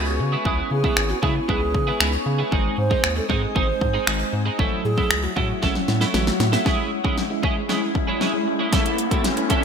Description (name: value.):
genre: dance-pop.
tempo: 116 BPM.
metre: 4/4.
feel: straight.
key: C# minor.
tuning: A4 = 442 Hz.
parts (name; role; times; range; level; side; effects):
mellow hollow wooden-headed alto flute; melody; 0.0-6.1 s; C#4 to B#4; -28 LUFS; right 3 dB; ping-pong delay.
mellow tine electric piano; accompaniment; 0.0-9.6 s; F#3 to F#4; -28 LUFS; equal; medium stereo tremolo, sidechain pumping.
glassy FM pad; sustained chords; 0.0-9.6 s; C#4 to E6; -30 LUFS; left 2 dB; ensemble chorus, built-in reverb, sidechain pumping.
twelve-string electric guitar; riff; 0.0-9.6 s; F#3 to A4; -26 LUFS; right 4 dB; analog chorus.
round analog bass; bass; 0.0-6.6 s; G#1 to C#3; -24 LUFS; equal; sidechain pumping.
pop drum kit; drums; 0.5-9.6 s; finger snaps, hi-hat, kick drum, snare drum; -23 LUFS; equal; overdrive, gated reverb.
riser; sound effects; 7.6-9.6 s; none; -28 LUFS; equal; none.
room: moderate lush hall reverb, RT60 1.9 s, digital ambience.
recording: bright 1980s-style digital production.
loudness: -19 LUFS.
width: side -6 dB against mid.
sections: 0.0-6.7 A section; 6.7-9.6 B section.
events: drum fill 5.6-6.7, 6.7-9.6; build-up 6.7-9.6; riser 7.6-9.6.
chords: 0.0 C#m7; 2.5 G#; 4.6 F#m7/A; 6.7 C#m; 8.7 A.